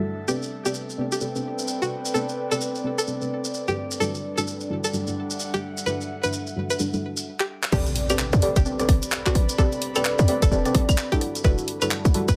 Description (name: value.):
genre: UK garage, two-step garage.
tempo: 129 BPM.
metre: 4/4.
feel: swing 61% on 16ths.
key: A dorian.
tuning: A4 = 438 Hz.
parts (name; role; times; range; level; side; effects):
deep mellow chord stab; stabs; 0.0-12.3 s; G3 to D5; -30 LUFS; equal; chorus, phaser, delay.
airy breathy pad; texture; 0.0-12.4 s; G3 to B5; -35 LUFS; equal; chorus, sidechain pumping.
string-like resonator pluck; melody; 0.3-12.4 s; F#4 to B4; -30 LUFS; equal; chorus, delay.
maracas; percussion; 0.3-12.4 s; none; -35 LUFS; equal; none.
garage drum kit; drums; 7.4-12.4 s; claves, crash cymbal, handclaps, hi-hat, rim click; -30 LUFS; equal; none.
short 808-style bass; bass; 7.7-12.4 s; E1 to E2; -23 LUFS; equal; none.
electronic kick drum; drums; 7.7-12.4 s; none; -23 LUFS; equal; none.
impact; sound effects; 7.7-9.6 s; none; -34 LUFS; equal; none.
room: light reverb.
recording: none.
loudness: -24 LUFS.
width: mono.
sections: 0.0-7.7 A section; 7.7-12.4 B section.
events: drum fill 7.4-7.7; drop 7.7-12.4; impact 7.7-9.6.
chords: 0.3 Am11; 3.8 Em11; 7.7 Am11; 11.2 Em11.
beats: | 0.28 0.75 1.21 1.68 | 2.14 2.61 3.07 3.54 | 4.00 4.47 4.93 5.40 | 5.87 6.33 6.79 7.26 | 7.72 8.19 8.65 9.12 | 9.59 10.05 10.52 10.98 | 11.45 11.91.